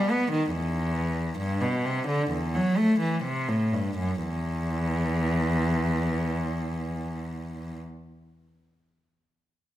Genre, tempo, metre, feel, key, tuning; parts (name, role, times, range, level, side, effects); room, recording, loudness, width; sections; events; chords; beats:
classical, baroque-style suite movement for unaccompanied cello; 60-72 BPM; 4/4; rubato; E minor; A4 = 440 Hz
warm cello; solo; 0.0-7.8 s; E2 to B3; -25 LUFS; equal
wet recital hall reverb, RT60 1.5 s; -25 LUFS; side -13 dB against mid
0.0-4.2 A section; 4.2-8.1 B section
slowing down 0.0-4.2
| 0.51 1.39 2.30 3.24 | 4.21 5.16 6.14 7.12